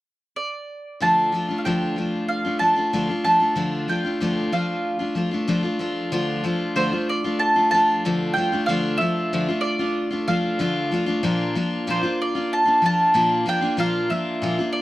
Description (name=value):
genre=rock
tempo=94 BPM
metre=4/4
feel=straight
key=D minor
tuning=A4 = 439 Hz
part: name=mandolin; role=melody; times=0.4-14.8 s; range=C5 to A5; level=-22 LUFS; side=right 1 dB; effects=none
part: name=picked steel-string acoustic guitar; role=accompaniment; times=1.0-14.8 s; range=Bb2 to F4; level=-22 LUFS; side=left 1 dB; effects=none
room=light reverb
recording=dry, close 1970s-style studio recording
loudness=-20 LUFS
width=side -16 dB against mid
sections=0.0-1.0 A section; 1.0-6.1 B section; 6.1-14.8 C section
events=none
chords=0.0 N.C.; 1.0 Dm; 11.2 Bb